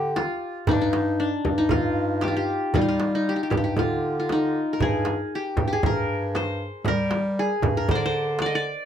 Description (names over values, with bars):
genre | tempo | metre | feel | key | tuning
Arabic maqam ensemble | 116 BPM | 4/4 | straight | G maqam kurd | A4 = 440 Hz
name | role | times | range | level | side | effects
qanun | melody | 0.0-8.9 s | D4 to Eb5 | -25 LUFS | left 1 dB | none
clear bass clarinet | bass | 0.0-8.8 s | G2 to G3 | -27 LUFS | equal | none
darbuka | percussion | 0.2-8.5 s | none | -28 LUFS | right 5 dB | none
frame drum | percussion | 0.2-8.5 s | none | -28 LUFS | left 1 dB | none
room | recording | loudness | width
little or no reverb | none | -22 LUFS | side -9 dB against mid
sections
0.0-8.9 A section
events
none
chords
none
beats
0.15 | 0.67 1.18 1.70 2.21 | 2.73 3.24 3.76 4.27 | 4.79 5.30 5.82 6.34 | 6.85 7.37 7.88 8.40